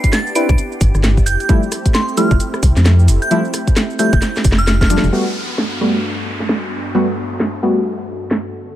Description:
UK garage, two-step garage; 132 BPM; 4/4; swing 61% on 16ths; G major; A4 = 440 Hz
glassy synth bell; melody; 0.0-5.0 s; C6 to D7; -23 LUFS; right 2 dB; chorus, phaser, dub echo
warm analog pad; sustained chords; 0.0-8.8 s; G2 to A4; -27 LUFS; equal; chorus, sidechain pumping
electronic kick drum; drums; 0.0-4.9 s; -14 LUFS; equal
garage drum kit; drums; 0.0-8.4 s; crash cymbal, hi-hat, rim click, shaker, snare drum; -19 LUFS; right 1 dB; low-pass filter on hats, low-pass filter on perc, low-pass filter on snare, low-pass filter on cymbals, low-pass filter on room
deep mellow chord stab; stabs; 0.4-7.8 s; F3 to B4; -18 LUFS; equal; chorus, dub echo
organ-like FM bass; bass; 0.5-5.1 s; F1 to F2; -13 LUFS; equal; sidechain pumping
downlifter; sound effects; 5.1-8.8 s; -27 LUFS; equal
light reverb; -13 LUFS; side -12 dB against mid
0.0-5.1 A section; 5.1-8.8 B section
drum fill 4.2-5.1; band accent 5.0; filter sweep on analog synth pad 5.1-8.8
0.0 Cmaj9; 1.3 Fmaj9; 5.1 Gmaj9

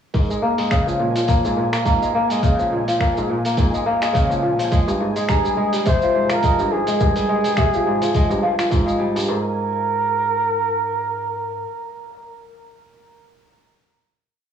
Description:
folktronica; 105 BPM; 4/4; swing 56% on 16ths; Bb dorian; A4 = 439 Hz
music box; second line; 0.1-9.6 s; F4 to Bb5; -30 LUFS; right 7 dB; cassette tape, tape echo
kora; arpeggios; 0.1-11.6 s; G2 to Bb3; -20 LUFS; left 1 dB; low-pass filter, cassette tape, tape echo
electronic kick drum; drums; 0.1-8.8 s; -20 LUFS; equal; cassette tape
lo-fi sampler-style drum kit; drums; 0.1-9.3 s; finger snaps, hi-hat, shaker; -29 LUFS; equal; overdrive, cassette tape
flickering grainy texture; texture; 0.5-9.3 s; Ab5; -34 LUFS; right 4 dB
breathy flugelhorn; melody; 5.3-12.3 s; Ab4 to C5; -22 LUFS; right 1 dB; cassette tape, tape echo
light reverb, digital ambience; home recording on cassette, studio reverb; -17 LUFS; side -8 dB against mid
0.1-9.3 groove; 9.3-11.6 final chord
0.1 Bbm7; 4.7 Fmadd9; 9.3 Absus2

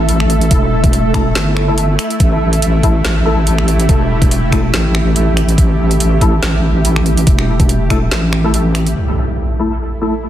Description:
deep dubstep; 142 BPM; 4/4; swing 55% on 16ths, half-time; A4 = 440 Hz
bowed-like drone; sustained chords; 0.0-10.3 s; A3 to A4; -21 LUFS; equal; built-in reverb
wobble bass; bass; 0.0-8.9 s; E1 to A1; -14 LUFS; equal; chorus
flickering grainy texture; texture; 0.0-9.0 s; E5; -24 LUFS; right 3 dB; built-in reverb
garage drum kit; drums; 0.1-8.9 s; finger snaps, hi-hat, snare drum; -20 LUFS; right 1 dB; overdrive, low-pass filter on hats, low-pass filter on snare
electronic kick drum; drums; 0.5-8.0 s; -12 LUFS; equal; overdrive
percussive organ stab; stabs; 1.1-10.1 s; A3 to A4; -22 LUFS; left 2 dB; ensemble chorus, dub echo
impact; sound effects; 9.0-10.3 s; -18 LUFS; equal
light reverb, digital ambience; dense, heavily limited modern master; -11 LUFS; side -12 dB against mid
0.0-9.0 A section; 9.0-10.3 B section
impact 9.0-10.3; filter sweep on synth stab 9.0-10.3
0.0 A5

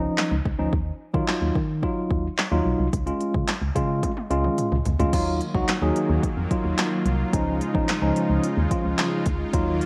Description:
dance-pop; 109 BPM; 4/4; straight; Eb minor; A4 = 438 Hz
tine electric piano; accompaniment; 0.0-9.8 s; F3 to Ab4; -28 LUFS; equal; sidechain pumping
organ-like FM bass; bass; 0.0-9.8 s; Bb1 to Eb3; -28 LUFS; equal; sidechain pumping
deep house drum kit; drums; 0.2-9.9 s; crash cymbal, handclaps, hi-hat, kick drum, snare drum, toms; -29 LUFS; equal; overdrive
soft supersaw; sustained chords; 5.1-9.9 s; Db3 to F4; -31 LUFS; equal; sidechain pumping
moderate plate reverb, RT60 1.7 s, digital ambience; -24 LUFS; mono
0.0-5.1 A section; 5.1-9.9 B section
drum fill 4.0-5.1
0.0 Dbadd9; 0.7 Ebmadd9; 2.9 Db; 5.1 Ebmadd9; 7.3 Dbadd9

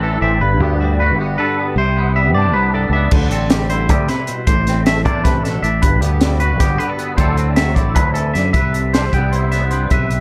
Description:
math rock and midwest emo; 310 BPM (eighths); 7/8; straight; C lydian; A4 = 440 Hz
twangy electric guitar; accompaniment; 0.0-10.2 s; G2 to D5; -24 LUFS; equal; ensemble chorus
twangy electric guitar; arpeggios; 0.0-10.2 s; F#4 to G5; -22 LUFS; equal; digital delay
fingered electric bass; bass; 0.0-10.2 s; G1 to G2; -20 LUFS; equal
crisp fusion drum kit; drums; 3.1-10.2 s; crash cymbal, hi-hat, kick drum, snare drum; -20 LUFS; equal
light reverb; dark, warm production; -16 LUFS; mono
0.0-8.5 A section; 8.5-10.2 B section
0.4 Gmaj9; 1.8 Cmaj9; 3.1 D9sus4; 4.5 Amadd9; 5.8 Gmaj9; 7.2 D9; 8.5 Cmaj7

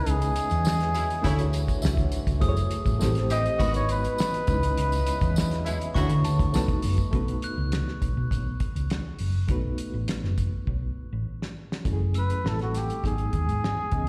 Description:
lush 1970s-style soul; 102 BPM; 4/4; straight; A4 = 440 Hz
warm flugelhorn; melody; 0.0-6.5, 12.2-14.1 s; F#4 to D#5; -32 LUFS; equal; slapback echo
reed electric piano; accompaniment; 0.0-14.1 s; E3 to A5; -36 LUFS; equal; overdrive, fast tremolo, slapback echo
mellow French horn section; sustained chords; 0.0-7.1 s; C#3 to D#5; -39 LUFS; equal
glockenspiel with hard plastic mallets; texture; 0.0-12.7 s; B5 to F#6; -43 LUFS; equal
hollow-body short-scale fingered electric bass; bass; 0.1-14.1 s; F#1 to D3; -29 LUFS; equal
cloth-damped thuddy drum kit; drums; 0.1-14.1 s; hi-hat, kick drum, snare drum; -31 LUFS; equal
tambourine; percussion; 0.2-7.1 s; -45 LUFS; equal
warm horn section; stabs; 0.9-6.1 s; B2 to G4; -38 LUFS; equal; plate reverb, slapback echo
light reverb; live gig heard through the venue's PA, recital hall reverb; -26 LUFS; mono
0.0-7.1 A section; 7.1-11.9 B section; 11.9-14.1 C section
reed electric piano fill 1.5-2.4, 5.4-7.1; drum fill 10.7-11.9
0.0 C#m9; 1.2 Dmaj9; 2.4 F#m9; 3.0 Am7; 3.6 G#m7; 4.5 C#m9; 6.0 Dmaj9; 6.5 B7; 11.9 F#m9; 12.4 Am7; 13.0 G#m7

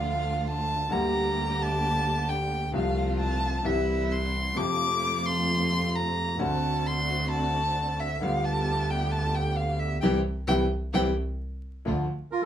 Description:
tango; 132 BPM; 4/4; rubato; A4 = 440 Hz
warm violin; second line; 0.0-11.1 s; E5 to D6; -29 LUFS; equal
bright baby grand piano; accompaniment; 0.0-12.0 s; C2 to G4; -30 LUFS; left 1 dB
clear studio string section; stabs; 0.0-12.1 s; G3 to G4; -36 LUFS; right 2 dB
warm double bass; bass; 0.0-12.1 s; C2 to F2; -30 LUFS; right 1 dB
bandoneon; melody; 12.3-12.5 s; F4 to Bb4; -24 LUFS; right 4 dB
wet small room reverb, RT60 0.5 s; band playing live in one room, vinyl crackle; -25 LUFS; side -10 dB against mid
0.0-11.9 A section
violin solo 0.0-11.9; band accent 10.0-11.9
0.0 Dm; 0.9 Gm/D; 2.7 F/C; 3.7 C; 4.6 F; 6.4 D7; 8.2 G7/D; 10.0 C; 11.9 Dm

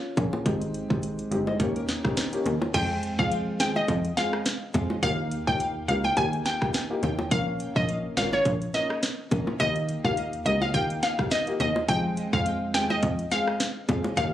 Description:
dancehall; 105 BPM; 4/4; swing 56% on 16ths; A4 = 442 Hz
nylon-string guitar; arpeggios; 0.0-2.7 s; C4 to Eb5; -34 LUFS; left 2 dB
dark grand piano; accompaniment; 0.2-14.3 s; Ab3 to Bb4; -31 LUFS; left 1 dB
plucky analog bass; bass; 0.2-14.3 s; G1 to F2; -29 LUFS; right 1 dB
island pop drum kit; drums; 0.2-14.3 s; crash cymbal, hi-hat, kick drum, rim click, snare drum; -29 LUFS; equal; overdrive
bongos; percussion; 0.2-14.2 s; -30 LUFS; left 2 dB
glassy wavetable pluck; melody; 2.7-14.3 s; Db5 to Ab5; -27 LUFS; left 1 dB; chorus, digital delay
studio reverb; recorded on a phone in the room, club reverb, compression; -24 LUFS; side -12 dB against mid
0.0-2.7 A section; 2.7-14.3 B section
0.5 Abmaj7; 1.6 Eb7; 2.7 Fm; 5.0 Ebadd9; 7.3 Bbm; 9.6 Ebadd9; 11.9 Fm

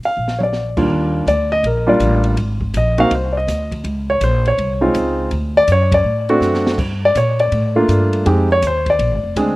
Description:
jazz piano trio; 163 BPM; 4/4; swing 65% on 8ths; A4 = 440 Hz
upright bass; bass; 0.0-9.6 s; F1 to Bb2; -19 LUFS; equal
open jazz drum kit; drums; 0.0-9.5 s; crash cymbal, hi-hat, kick drum, ride cymbal, snare drum, toms; -26 LUFS; equal
warm concert grand piano; melody; 0.1-9.6 s; Eb2 to F5; -15 LUFS; equal; slapback echo
little or no reverb; recorded outdoors, with no room sound; -14 LUFS; side -19 dB against mid
0.9-9.6 A section
drum fill 0.2-0.5, 6.4-6.8; band accent 5.9
0.2 Bb; 0.9 Ebmaj7; 2.4 Ab; 3.8 Dbmaj7; 5.3 D7; 6.8 Gm9; 8.3 Fm7; 9.0 Bb7

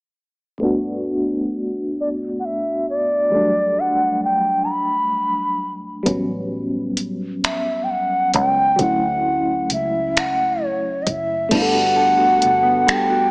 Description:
slow six-eight R&B; 44 BPM (dotted quarters); 6/8; straight; A4 = 440 Hz
FM electric piano with tremolo; accompaniment; 0.6-13.3 s; E2 to A4; -23 LUFS; equal; low-pass filter
hollow bansuri; melody; 2.0-13.3 s; C#5 to B5; -18 LUFS; equal; low-pass filter
vintage muted fingered electric bass; bass; 6.1-12.9 s; F#1 to D2; -29 LUFS; equal
smooth R&B drum kit; drums; 6.1-13.1 s; crash cymbal, finger snaps, hi-hat, kick drum; -21 LUFS; equal
mellow electric guitar; second line; 11.5-13.3 s; G3 to A4; -23 LUFS; equal; analog chorus
light reverb; small speaker sound; -17 LUFS; side -32 dB against mid
0.6-11.5 A section; 11.5-13.3 B section
filter sweep 0.6-11.5
0.6 Gmaj9; 3.3 Em11; 6.1 A13; 8.8 Dmaj7; 11.5 Gmaj9

